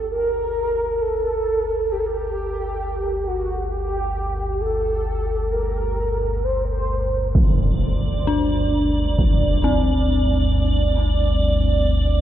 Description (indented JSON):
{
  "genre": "dark ambient drone",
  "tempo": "66 BPM",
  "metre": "4/4",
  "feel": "straight",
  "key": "G minor",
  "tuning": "A4 = 441 Hz",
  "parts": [
    { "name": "mellow horn-like synth lead", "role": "melody", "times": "0.0-7.3 s", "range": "F#4 to C5", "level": "-24 LUFS", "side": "right 1 dB", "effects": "phaser, ensemble chorus, diffuse ambient delay" },
    { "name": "dark detuned synth bell", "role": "arpeggios", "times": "0.0-12.2 s", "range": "C4 to G4", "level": "-24 LUFS", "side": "left 2 dB", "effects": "chorus, diffuse ambient delay" },
    { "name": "deep rumbling drone", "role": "drone", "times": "0.0-12.2 s", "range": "G1 to D2", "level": "-22 LUFS", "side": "equal", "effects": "built-in reverb, wide subtle chorus" },
    { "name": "impact", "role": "percussion", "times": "7.4-9.4 s", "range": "none", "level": "-22 LUFS", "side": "equal", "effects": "low-pass filter on sfx" },
    { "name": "icy glass pad", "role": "texture", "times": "7.8-12.2 s", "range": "D5", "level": "-25 LUFS", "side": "right 4 dB", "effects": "chorus, built-in reverb" }
  ],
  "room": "wet huge ambient reverb, RT60 7.4 s",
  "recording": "in a vast, echoing space, nothing above 8.0 kHz",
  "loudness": "-19 LUFS",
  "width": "side -11 dB against mid",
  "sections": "0.0-12.2 A section",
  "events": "fade-in on synth drone 0.0-12.2",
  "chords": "0.0 G5"
}